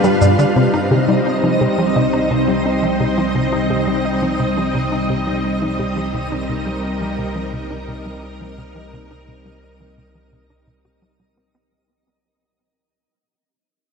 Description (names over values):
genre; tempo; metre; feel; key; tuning
ambient, sequencer-driven space music; 86 BPM; 4/4; straight; C minor; A4 = 442 Hz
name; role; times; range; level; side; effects
string machine, full ensemble; sustained chords; 0.0-11.7 s; G3 to F5; -18 LUFS; equal; ensemble chorus
soft round pluck; arpeggios; 0.0-5.9 s; C4 to Eb5; -25 LUFS; left 2 dB; chorus, auto-pan, tape echo
tight sequencer bass; riff; 0.0-11.7 s; G2 to G4; -21 LUFS; equal; tape echo
shaker; percussion; 0.0-0.5 s; none; -38 LUFS; right 2 dB; tape echo
twinkling granular texture; texture; 0.0-11.7 s; Eb4 to F5; -29 LUFS; right 1 dB; built-in reverb, ensemble chorus
analog drone; bass; 1.8-11.7 s; C2; -32 LUFS; equal; chorus
room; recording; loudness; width
wet huge ambient reverb, RT60 7.4 s; dreamy mix soaked in reverb; -15 LUFS; side -5 dB against mid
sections
0.6-11.7 A section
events
fade-out 0.6-11.7; filter sweep on analog synth bass 0.6-11.7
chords
0.0 G7; 0.6 Cm